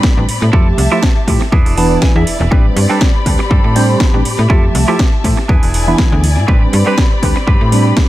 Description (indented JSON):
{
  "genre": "filtered disco house",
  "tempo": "121 BPM",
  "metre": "4/4",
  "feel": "swing 55% on 16ths",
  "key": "A minor",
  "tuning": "A4 = 441 Hz",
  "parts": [
    { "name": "tine electric piano", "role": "accompaniment", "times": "0.0-8.1 s", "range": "E3 to E5", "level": "-17 LUFS", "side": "right 2 dB", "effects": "phaser, sidechain pumping" },
    { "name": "dark studio string section", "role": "sustained chords", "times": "0.0-8.1 s", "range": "C4 to B5", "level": "-21 LUFS", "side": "left 3 dB", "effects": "vintage 12-bit sampler grit, sidechain pumping" },
    { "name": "clean electric guitar", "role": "riff", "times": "0.0-8.0 s", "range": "C4 to A5", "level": "-22 LUFS", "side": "right 5 dB", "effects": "sidechain pumping, analog delay" },
    { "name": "electronic kick drum", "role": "drums", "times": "0.0-8.1 s", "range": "none", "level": "-12 LUFS", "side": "equal", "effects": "small room reverb" },
    { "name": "house drum kit", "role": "drums", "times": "0.0-8.1 s", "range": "hi-hat, snare drum", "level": "-20 LUFS", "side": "right 1 dB", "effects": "small room reverb, sidechain pumping on hats, sidechain pumping on cymbals, analog delay" },
    { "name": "slap-like FM bass", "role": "bass", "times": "0.2-7.9 s", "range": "E1 to A2", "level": "-14 LUFS", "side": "equal", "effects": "sidechain pumping" }
  ],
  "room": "little or no reverb",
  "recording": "echo-heavy mix",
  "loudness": "-9 LUFS",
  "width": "side -15 dB against mid",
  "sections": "0.0-8.1 A section",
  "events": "clean electric guitar fill 1.5-2.5",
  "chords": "0.0 Am11; 0.5 Fmaj9; 1.5 E7; 2.5 Am11; 4.5 Fmaj9; 5.5 E7; 6.5 Am11",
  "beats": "0.04 | 0.53 1.03 1.52 2.02 | 2.52 3.01 3.51 4.00 | 4.50 5.00 5.49 5.99 | 6.48 6.98 7.48 7.97"
}